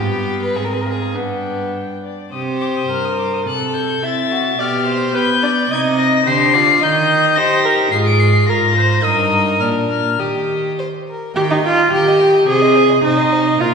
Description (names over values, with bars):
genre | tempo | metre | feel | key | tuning
quick classical-period movement for string quartet | 106 BPM | 2/4 | straight | C minor, Eb major from 6.8 s | A4 = 440 Hz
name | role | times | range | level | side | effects
dark violin | melody | 0.0-13.7 s | D5 to D7 | -19 LUFS | left 6 dB | none
warm violin | second line | 0.0-13.7 s | B3 to G5 | -22 LUFS | left 2 dB | none
warm viola | accompaniment | 0.0-13.7 s | B3 to E5 | -17 LUFS | right 1 dB | none
dark cello | bass | 0.0-13.7 s | G2 to Eb4 | -20 LUFS | right 3 dB | none
room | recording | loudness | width
wet recital hall reverb, RT60 1.6 s | recorded in a church or concert hall, nothing above 11.0 kHz | -13 LUFS | side -5 dB against mid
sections
0.0-2.3 A section; 2.3-11.4 B section; 11.4-13.7 C section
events
none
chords
0.0 G; 0.6 Ab; 1.1 G; 2.3 C5; 3.5 C6; 4.6 G7/B; 5.7 Cm; 6.8 Eb; 7.9 Fm/Ab; 9.0 Eb/G; 9.6 Bb; 10.2 Eb; 12.5 Ab/C